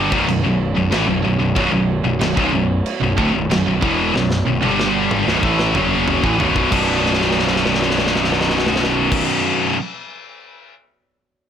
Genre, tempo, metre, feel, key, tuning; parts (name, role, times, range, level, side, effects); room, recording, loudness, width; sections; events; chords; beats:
heavy metal; 93 BPM; 4/4; straight; B minor; A4 = 440 Hz
dark analog pad; sustained chords; 0.0-9.2 s; B3 to D5; -31 LUFS; right 3 dB; chorus
biting overdriven guitar; riff; 0.0-9.8 s; B1 to D4; -24 LUFS; equal
high-gain distorted guitar; riff; 0.0-9.8 s; B1 to A3; -22 LUFS; right 9 dB; distortion
scooped high-gain guitar; riff; 0.0-9.8 s; B1 to A3; -19 LUFS; left 6 dB; distortion
fuzz picked electric bass; bass; 0.0-9.2 s; B0 to A1; -23 LUFS; equal; overdrive
tight metal drum kit; drums; 0.1-10.7 s; china cymbal, crash cymbal, kick drum, snare drum, toms; -23 LUFS; equal; soft clipping on kick
light reverb; blown-out, overdriven recording, overdrive; -15 LUFS; side -8 dB against mid
0.0-6.7 A section; 6.7-9.3 B section
drum fill 4.1-6.7, 7.0-9.1
0.1 Bm; 4.6 G5; 5.3 Bm
0.28 0.92 | 1.57 2.21 2.85 3.50 | 4.14 4.78 5.43 6.07 | 6.71 7.35 7.99 8.63